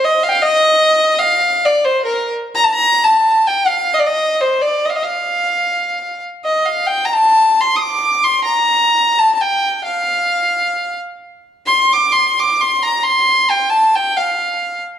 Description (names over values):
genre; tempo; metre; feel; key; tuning
balkan folk; free time; none; none; F mixolydian; A4 = 444 Hz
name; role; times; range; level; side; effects
clear violin; solo; 0.0-14.8 s; Bb4 to Eb6; -12 LUFS; equal; none
room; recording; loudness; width
moderate recital hall reverb, RT60 1.7 s; dark, warm production; -12 LUFS; side -9 dB against mid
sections
0.0-15.0 A section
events
violin solo 0.0-15.0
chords
none